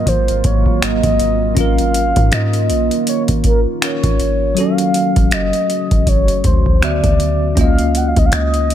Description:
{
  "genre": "contemporary R&B",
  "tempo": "80 BPM",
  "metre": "4/4",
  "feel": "swing 58% on 16ths",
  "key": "Db major",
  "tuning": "A4 = 443 Hz",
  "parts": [
    { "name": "mellow horn-like synth lead", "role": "melody", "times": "0.0-8.7 s", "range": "Bb4 to Gb5", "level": "-19 LUFS", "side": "equal", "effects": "chorus, ping-pong delay" },
    { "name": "bell-like tine electric piano", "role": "accompaniment", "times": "0.0-8.7 s", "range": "Ab2 to E5", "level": "-20 LUFS", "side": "left 1 dB", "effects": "fast stereo tremolo" },
    { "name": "deep dark ambient pad", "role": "sustained chords", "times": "0.0-8.7 s", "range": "C3 to Gb4", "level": "-23 LUFS", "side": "right 4 dB", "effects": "chorus, built-in reverb" },
    { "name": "warm 808-style bass", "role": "bass", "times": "0.0-8.7 s", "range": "Gb1 to Ab2", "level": "-19 LUFS", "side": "equal", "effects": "none" },
    { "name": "booming analog drum machine", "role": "drums", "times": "0.1-8.7 s", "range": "finger snaps, hi-hat, kick drum", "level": "-16 LUFS", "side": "equal", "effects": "none" }
  ],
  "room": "digital ambience",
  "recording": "none",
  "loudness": "-12 LUFS",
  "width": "side -10 dB against mid",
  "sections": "0.0-8.7 A section",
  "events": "none",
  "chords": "0.0 Ab13; 1.6 Db69/Ab; 4.6 Gbm; 6.8 D69; 7.6 Db69"
}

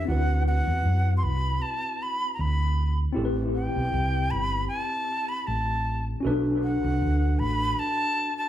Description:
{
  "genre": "lovers rock reggae",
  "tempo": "78 BPM",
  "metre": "4/4",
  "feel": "swing 54% on 16ths",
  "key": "unclear",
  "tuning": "A4 = 440 Hz",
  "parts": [
    { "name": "jazz flute", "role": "melody", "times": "0.0-8.5 s", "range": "F#5 to C6", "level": "-28 LUFS", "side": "right 1 dB", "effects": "none" },
    { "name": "tine electric piano", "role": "accompaniment", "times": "0.0-8.5 s", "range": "C4 to B4", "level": "-30 LUFS", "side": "left 2 dB", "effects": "medium stereo tremolo, dub echo" },
    { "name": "hollow-body short-scale fingered electric bass", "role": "bass", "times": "0.1-7.7 s", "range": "G1 to F#2", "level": "-25 LUFS", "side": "equal", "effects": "none" }
  ],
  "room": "moderate large studio reverb, RT60 0.9 s",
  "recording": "band playing live in one room, faint mains hum",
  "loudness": "-23 LUFS",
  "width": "side -12 dB against mid",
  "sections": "0.0-8.5 A section",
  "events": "none",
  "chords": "0.1 D13; 3.2 Am7; 6.2 Bm7"
}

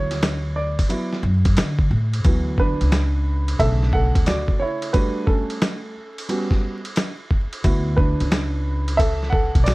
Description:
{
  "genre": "hip hop, jazz-hop",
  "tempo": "89 BPM",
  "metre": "4/4",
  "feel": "swing 66% on 16ths",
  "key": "D major",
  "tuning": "A4 = 440 Hz",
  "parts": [
    { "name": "dark grand piano", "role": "accompaniment", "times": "0.0-9.7 s", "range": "C#3 to F#5", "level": "-24 LUFS", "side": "right 2 dB", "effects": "none" },
    { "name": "upright bass", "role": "bass", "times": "0.0-9.7 s", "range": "B1 to D3", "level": "-21 LUFS", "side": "equal", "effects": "none" },
    { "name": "dusty soul sampler-style drum kit", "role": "drums", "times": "0.1-9.7 s", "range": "hi-hat, kick drum, ride cymbal, snare drum", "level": "-21 LUFS", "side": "equal", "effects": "none" }
  ],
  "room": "light reverb",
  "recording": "vinyl crackle",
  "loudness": "-18 LUFS",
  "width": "side -22 dB against mid",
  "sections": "0.0-2.2 A section; 2.2-9.7 B section",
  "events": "grand piano solo 0.0-2.2, 2.2-9.7; break 4.9-7.6",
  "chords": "0.0 D69; 3.6 Bm9; 4.9 Gmaj9#11; 6.3 Gmaj7#11; 7.6 D69"
}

